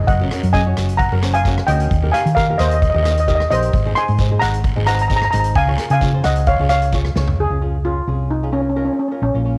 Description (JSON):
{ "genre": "calypso", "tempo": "132 BPM", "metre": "4/4", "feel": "straight", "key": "Db major", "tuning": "A4 = 439 Hz", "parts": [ { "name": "flamenco guitar", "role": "accompaniment", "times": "0.0-9.6 s", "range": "Bb3 to Db5", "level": "-30 LUFS", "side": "equal", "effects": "cassette tape" }, { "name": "hollow-body short-scale fingered electric bass", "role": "bass", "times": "0.0-9.6 s", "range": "Gb1 to Eb3", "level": "-20 LUFS", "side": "equal", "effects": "none" }, { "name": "steel pan", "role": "melody", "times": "0.1-9.6 s", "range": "Db4 to C6", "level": "-21 LUFS", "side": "equal", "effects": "cassette tape" }, { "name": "street-band drum kit", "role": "drums", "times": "0.1-7.4 s", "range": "hi-hat, kick drum, rim click, snare drum, toms", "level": "-25 LUFS", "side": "equal", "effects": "cassette tape" }, { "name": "guiro", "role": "percussion", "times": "0.1-7.0 s", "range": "none", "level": "-36 LUFS", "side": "equal", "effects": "none" } ], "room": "studio reverb", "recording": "home recording on cassette", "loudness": "-17 LUFS", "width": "mono", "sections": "0.0-7.4 A section; 7.4-9.6 B section", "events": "drum fill 7.2", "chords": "0.1 Gb6; 1.9 Eb; 3.7 Abadd9; 5.6 Db", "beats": "| 0.08 0.54 1.00 1.45 | 1.91 2.36 2.82 3.28 | 3.73 4.19 4.64 5.10 | 5.56 6.01 6.47 6.93 | 7.39 7.85 8.31 8.77 | 9.22" }